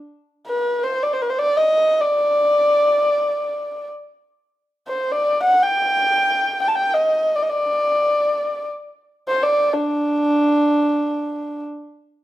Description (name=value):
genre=Turkish makam ensemble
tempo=free time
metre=none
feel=none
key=D makam hicaz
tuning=A4 = 441 Hz
part: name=dark kamancheh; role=solo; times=0.5-11.6 s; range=D4 to A5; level=-17 LUFS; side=equal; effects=none
room=wet large studio reverb, RT60 1.1 s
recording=band playing live in one room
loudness=-17 LUFS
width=side -14 dB against mid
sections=0.0-12.2 A section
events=none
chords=none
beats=free time